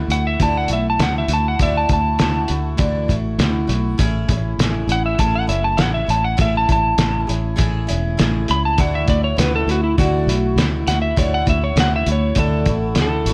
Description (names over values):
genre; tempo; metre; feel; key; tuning
folk rock and heartland rock; 100 BPM; 4/4; straight; unclear; A4 = 443 Hz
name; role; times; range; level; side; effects
picked twelve-string acoustic guitar; accompaniment; 0.0-13.3 s; D3 to G#4; -26 LUFS; equal; none
fingered electric bass; bass; 0.0-13.3 s; E1 to D2; -23 LUFS; equal; none
electric slide guitar; melody; 0.1-13.3 s; E4 to B5; -23 LUFS; equal; tape echo
cloth-damped thuddy drum kit; drums; 0.1-13.3 s; hi-hat, kick drum, snare drum; -22 LUFS; equal; none
room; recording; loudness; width
light reverb, small room ambience; dark, warm production; -18 LUFS; mono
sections
0.0-13.3 A section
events
electric slide guitar solo 0.0-13.3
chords
0.0 Dadd9; 4.0 Amaj7; 8.8 Dadd9